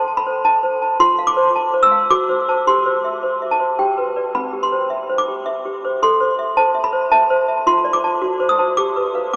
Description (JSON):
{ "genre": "classical, lullaby for toy piano", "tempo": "108 BPM", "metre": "3/4", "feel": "straight", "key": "C major", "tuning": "A4 = 440 Hz", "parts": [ { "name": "toy piano", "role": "solo", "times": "0.0-9.4 s", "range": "C4 to E6", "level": "-14 LUFS", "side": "equal", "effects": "none" } ], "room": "wet huge ambient reverb, RT60 8.4 s", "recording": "in a vast, echoing space, small speaker sound", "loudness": "-14 LUFS", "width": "side -26 dB against mid", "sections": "0.0-9.4 A section", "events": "none", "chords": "0.0 Am; 1.0 Dm7/F; 2.1 F#dim; 2.7 C/G; 3.8 G; 4.3 C; 6.0 Am; 7.7 Dm7/F; 8.2 F#dim7; 8.8 G7" }